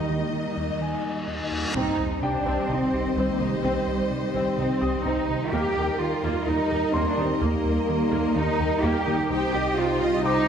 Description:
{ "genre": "cinematic, hybrid orchestral and electronic film score", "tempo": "127 BPM", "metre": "4/4", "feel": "straight", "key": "C minor", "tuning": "A4 = 440 Hz", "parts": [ { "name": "warm symphonic violin section", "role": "melody", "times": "0.0-10.5 s", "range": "Eb5 to G5", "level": "-38 LUFS", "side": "left 4 dB", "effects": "none" }, { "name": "warm studio violin section", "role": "second line", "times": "0.0-10.5 s", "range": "Bb4 to Eb5", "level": "-32 LUFS", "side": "left 2 dB", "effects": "none" }, { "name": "warm symphonic viola section", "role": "accompaniment", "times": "0.0-10.5 s", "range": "G3 to G4", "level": "-32 LUFS", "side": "equal", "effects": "none" }, { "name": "dark analog pad", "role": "sustained chords", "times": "0.0-10.5 s", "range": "Eb3 to Eb5", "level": "-31 LUFS", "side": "equal", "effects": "chorus" }, { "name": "dark symphonic cello section", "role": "bass", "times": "0.0-10.5 s", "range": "Eb3 to G4", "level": "-27 LUFS", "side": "right 2 dB", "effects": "none" }, { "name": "reverse cymbal and sub drop", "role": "sound effects", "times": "0.8-3.6 s", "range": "none", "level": "-34 LUFS", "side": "left 1 dB", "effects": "none" }, { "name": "clear baby grand piano", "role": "texture", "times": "0.0-10.5 s", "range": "G4 to Eb6", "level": "-35 LUFS", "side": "left 2 dB", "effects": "ping-pong delay" }, { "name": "smooth synth bass", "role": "riff", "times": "0.1-10.4 s", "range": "C2 to Eb3", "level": "-32 LUFS", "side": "right 2 dB", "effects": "none" }, { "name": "rich symphonic double bass section", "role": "bass", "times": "1.7-10.5 s", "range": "C2 to Eb2", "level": "-33 LUFS", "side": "right 2 dB", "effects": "none" }, { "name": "mellow French horn section", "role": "sustained chords", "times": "1.8-10.5 s", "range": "G3 to Eb4", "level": "-32 LUFS", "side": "left 3 dB", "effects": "none" } ], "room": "wet scoring stage reverb, RT60 1.5 s", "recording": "heard from further back in the room", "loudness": "-22 LUFS", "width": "side -8 dB against mid", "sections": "0.0-1.7 A section; 1.7-10.5 B section", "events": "reverse cymbal 0.8-1.7; impact 1.7-3.6", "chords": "0.0 Eb; 1.7 Cm; 5.5 Eb; 9.3 Cm" }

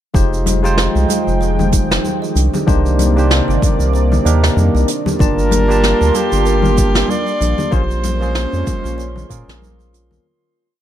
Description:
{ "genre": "sunset chillout", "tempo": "95 BPM", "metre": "4/4", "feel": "swing 56% on 16ths", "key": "F minor", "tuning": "A4 = 443 Hz", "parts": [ { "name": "barky tine electric piano", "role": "accompaniment", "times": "0.1-10.3 s", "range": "Eb3 to A5", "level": "-21 LUFS", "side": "moving between left 5 dB and right 5 dB", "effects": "medium stereo tremolo, auto-pan, tape echo" }, { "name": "lush unison pad", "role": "sustained chords", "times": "0.7-10.2 s", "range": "C3 to A5", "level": "-21 LUFS", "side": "equal", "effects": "chorus" }, { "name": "kalimba", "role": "arpeggios", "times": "0.1-10.2 s", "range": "D4 to F5", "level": "-25 LUFS", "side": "right 4 dB", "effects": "tape echo" }, { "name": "round analog bass", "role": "bass", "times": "0.1-10.2 s", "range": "F1 to Bb2", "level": "-16 LUFS", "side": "equal", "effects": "tube saturation" }, { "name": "electronic kick drum", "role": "drums", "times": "0.1-9.4 s", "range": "none", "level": "-16 LUFS", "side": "equal", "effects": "overdrive" }, { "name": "soft brush drum kit", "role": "drums", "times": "0.2-10.2 s", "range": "hi-hat, shaker, snare drum", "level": "-22 LUFS", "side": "right 2 dB", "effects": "none" }, { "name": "congas", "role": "percussion", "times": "0.5-10.2 s", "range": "none", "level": "-24 LUFS", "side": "left 3 dB", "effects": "none" }, { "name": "warm flugelhorn", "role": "melody", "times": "5.2-9.6 s", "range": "G4 to D5", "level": "-20 LUFS", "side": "equal", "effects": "tape echo" }, { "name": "drifting glass-harmonics texture", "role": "texture", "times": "5.6-10.3 s", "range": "C6", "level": "-29 LUFS", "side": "right 5 dB", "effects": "chorus, built-in reverb" } ], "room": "light reverb, small room ambience", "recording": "dark, warm production", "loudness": "-12 LUFS", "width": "side -11 dB against mid", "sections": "0.1-10.3 groove", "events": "fade-out 6.9-10.3", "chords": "0.1 Fm9; 2.4 Cm9; 4.9 Gm9; 7.7 Bbm9" }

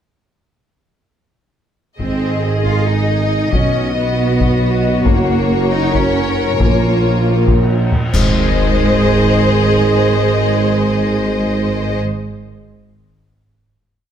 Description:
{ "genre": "cinematic, epic orchestral film score", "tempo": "free time", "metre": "none", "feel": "none", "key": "Ab mixolydian", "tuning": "A4 = 440 Hz", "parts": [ { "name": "warm studio violin section", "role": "melody", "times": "2.0-12.0 s", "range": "Db5 to Eb5", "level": "-25 LUFS", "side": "left 6 dB", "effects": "none" }, { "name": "warm symphonic violin section", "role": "second line", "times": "2.0-12.0 s", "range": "Bb4 to Eb5", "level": "-22 LUFS", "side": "left 3 dB", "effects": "none" }, { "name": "dark symphonic viola section", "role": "accompaniment", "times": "2.0-12.0 s", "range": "F4 to Ab4", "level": "-22 LUFS", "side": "right 2 dB", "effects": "none" }, { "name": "dark French horn section", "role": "sustained chords", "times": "2.0-12.0 s", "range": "F#4 to Eb5", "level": "-24 LUFS", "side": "left 5 dB", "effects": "none" }, { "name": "warm trombone section", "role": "sustained chords", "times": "2.0-12.0 s", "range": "Eb3 to Db4", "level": "-25 LUFS", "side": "right 3 dB", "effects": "none" }, { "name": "dark tuba", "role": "bass", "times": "2.0-12.0 s", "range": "Gb1 to B1", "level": "-21 LUFS", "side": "right 4 dB", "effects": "none" }, { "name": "rich studio cello section", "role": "bass", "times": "2.0-12.0 s", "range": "Ab3 to F4", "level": "-20 LUFS", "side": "right 1 dB", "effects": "none" }, { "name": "warm symphonic double bass section", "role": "bass", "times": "2.0-12.0 s", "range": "Gb1 to B1", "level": "-20 LUFS", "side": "right 2 dB", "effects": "none" }, { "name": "taiko ensemble", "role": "drums", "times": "2.0-8.1 s", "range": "none", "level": "-19 LUFS", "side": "left 1 dB", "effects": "none" }, { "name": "cymbal swell, clash cymbals and concert bass drum", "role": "percussion", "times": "5.1-9.0 s", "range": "none", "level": "-21 LUFS", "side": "left 1 dB", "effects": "none" } ], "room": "moderate recital hall reverb, RT60 1.6 s", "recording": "none", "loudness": "-12 LUFS", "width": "side -9 dB against mid", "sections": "2.0-8.1 theme; 8.1-11.2 final chord", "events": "band accent 8.1-8.6", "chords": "2.0 Ab; 3.5 B; 5.1 Gb; 6.6 Bbm; 8.1 Ab" }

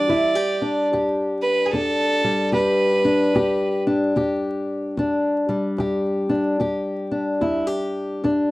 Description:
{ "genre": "acoustic country blues, solo or duo", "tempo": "74 BPM", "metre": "4/4", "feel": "swing 62% on 8ths", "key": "E minor", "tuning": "A4 = 440 Hz", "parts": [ { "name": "rich fiddle", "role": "melody", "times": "0.0-3.8 s", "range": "G#4 to D5", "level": "-21 LUFS", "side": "right 1 dB", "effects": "slapback echo" }, { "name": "fingerpicked old ladder-braced acoustic guitar", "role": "accompaniment", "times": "0.0-8.5 s", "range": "E2 to G4", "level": "-20 LUFS", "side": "left 1 dB", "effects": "none" } ], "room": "light reverb", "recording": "dry, close 1970s-style studio recording, vinyl crackle", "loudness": "-19 LUFS", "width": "side -19 dB against mid", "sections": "0.0-8.5 A section", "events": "none", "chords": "0.0 Em7" }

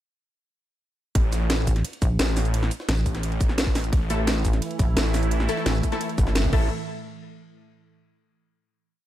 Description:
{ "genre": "dark technical drum and bass", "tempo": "173 BPM", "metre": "4/4", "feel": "straight", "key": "unclear", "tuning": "A4 = 441 Hz", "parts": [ { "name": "wide detuned saw bass", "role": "bass", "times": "1.2-6.7 s", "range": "A1", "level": "-24 LUFS", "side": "equal", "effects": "chorus, overdrive, sidechain pumping" }, { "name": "drum and bass drum kit", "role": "drums", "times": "1.2-6.6 s", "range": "cabasa, crash cymbal, hi-hat, snare drum", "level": "-28 LUFS", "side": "equal", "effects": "overdrive, small room ambience" }, { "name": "electronic kick drum", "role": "drums", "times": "1.2-6.6 s", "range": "none", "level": "-22 LUFS", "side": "equal", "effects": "small room ambience" }, { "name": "jungle sampler-style drum kit", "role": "drums", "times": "1.2-6.4 s", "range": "ride cymbal, snare drum", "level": "-36 LUFS", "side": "equal", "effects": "none" }, { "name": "pulsing pluck wobble bass", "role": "bass", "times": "1.7-6.5 s", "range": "G1 to Bb1", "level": "-23 LUFS", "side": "equal", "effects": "chorus" }, { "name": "sweeping resonant pad", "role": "sustained chords", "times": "3.9-6.7 s", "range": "A2 to A4", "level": "-32 LUFS", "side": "right 3 dB", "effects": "chorus, sidechain pumping" }, { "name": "orchestra-hit-like synth stab", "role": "stabs", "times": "4.1-6.7 s", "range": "A3 to A4", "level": "-30 LUFS", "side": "left 2 dB", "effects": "built-in reverb, digital delay" } ], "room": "digital ambience", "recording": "dark, warm production", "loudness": "-21 LUFS", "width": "side -13 dB against mid", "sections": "1.2-6.7 drop; 6.7-8.1 final hit", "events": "drop 1.2-6.7; band accent 6.4", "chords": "1.2 A5; 6.7 N.C." }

